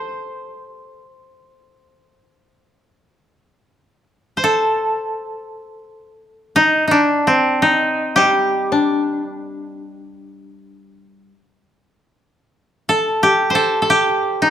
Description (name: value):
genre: japanese traditional, Japanese chamber music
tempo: 57 BPM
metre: 4/4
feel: rubato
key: C kumoi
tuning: A4 = 440 Hz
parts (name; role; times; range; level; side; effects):
- koto; melody; 0.0-14.5 s; C4 to C5; -15 LUFS; equal; none
- koto; accompaniment; 8.2-11.3 s; G3 to D4; -21 LUFS; left 4 dB; none
room: moderate recital hall reverb, RT60 1.4 s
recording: none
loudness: -14 LUFS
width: side -10 dB against mid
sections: 0.0-4.4 A section; 4.4-14.5 B section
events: none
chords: none